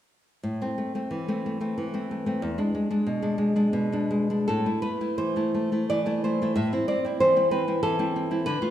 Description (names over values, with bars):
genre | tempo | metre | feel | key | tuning
romantic piece for solo classical guitar | 79-96 BPM | 3/4 | rubato | A minor | A4 = 441 Hz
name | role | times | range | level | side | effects
nylon-string guitar | solo | 0.4-8.7 s | E2 to E5 | -23 LUFS | equal | none
room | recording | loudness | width
wet recital hall reverb, RT60 1.5 s | recorded in a church or concert hall | -23 LUFS | side -11 dB against mid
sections
0.4-4.5 A section; 4.5-8.7 B section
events
none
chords
0.4 Am; 2.4 E7 (rootless); 4.5 Am